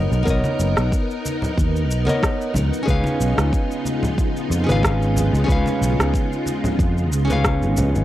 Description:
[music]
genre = sunset chillout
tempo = 92 BPM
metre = 4/4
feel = swing 54% on 16ths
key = unclear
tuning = A4 = 440 Hz
[part]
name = nylon-string guitar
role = accompaniment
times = 0.0-8.0 s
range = B3 to E#5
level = -25 LUFS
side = equal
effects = auto-pan, analog delay
[part]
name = soft string machine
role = sustained chords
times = 0.0-8.0 s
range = C#3 to A#4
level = -25 LUFS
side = equal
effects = ensemble chorus
[part]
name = sustaining fretless electric bass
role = bass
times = 0.0-8.0 s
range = F#1 to E#2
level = -20 LUFS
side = equal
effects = tube saturation
[part]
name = electronic shaker and rim click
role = drums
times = 0.1-8.0 s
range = none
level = -26 LUFS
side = equal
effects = small room ambience
[part]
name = electronic kick drum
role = drums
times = 0.3-7.6 s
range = none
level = -21 LUFS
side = equal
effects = small room ambience
[part]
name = congas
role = percussion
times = 0.4-7.9 s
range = none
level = -27 LUFS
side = equal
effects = none
[sound]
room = digital ambience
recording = dry, gritty hardware recording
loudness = -17 LUFS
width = side -14 dB against mid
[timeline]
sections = 0.0-8.0 A section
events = none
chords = 0.0 Bmaj9; 2.6 C#7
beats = | 0.27 0.92 1.58 2.23 | 2.88 3.53 4.18 4.84 | 5.49 6.14 6.79 7.45

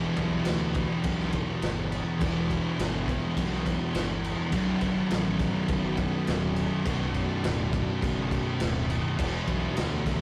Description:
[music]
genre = stoner and doom metal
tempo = 103 BPM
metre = 4/4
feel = straight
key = unclear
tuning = A4 = 444 Hz
[part]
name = thick fuzz guitar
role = riff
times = 0.0-10.2 s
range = B1 to E3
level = -34 LUFS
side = equal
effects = distortion
[part]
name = thick fuzz guitar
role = riff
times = 0.0-10.2 s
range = B1 to E3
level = -34 LUFS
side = equal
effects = distortion
[part]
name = thick fuzz guitar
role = riff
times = 0.0-10.2 s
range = B1 to E4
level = -38 LUFS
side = equal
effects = distortion
[part]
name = fuzz fingered electric bass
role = bass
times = 0.0-10.2 s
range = B0 to D2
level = -36 LUFS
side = equal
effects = overdrive
[part]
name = raw garage drum kit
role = drums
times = 0.2-10.2 s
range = crash cymbal, kick drum, snare drum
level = -35 LUFS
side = equal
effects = none
[sound]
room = moderate studio reverb, RT60 0.6 s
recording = rough rehearsal-room recording, warm saturation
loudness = -28 LUFS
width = mono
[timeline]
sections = 0.0-10.2 A section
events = none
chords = 0.0 Em; 4.5 Bm; 9.2 Em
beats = 0.46 1.04 1.62 | 2.21 2.79 3.37 3.95 | 4.54 5.12 5.70 6.28 | 6.86 7.45 8.03 8.61 | 9.19 9.77

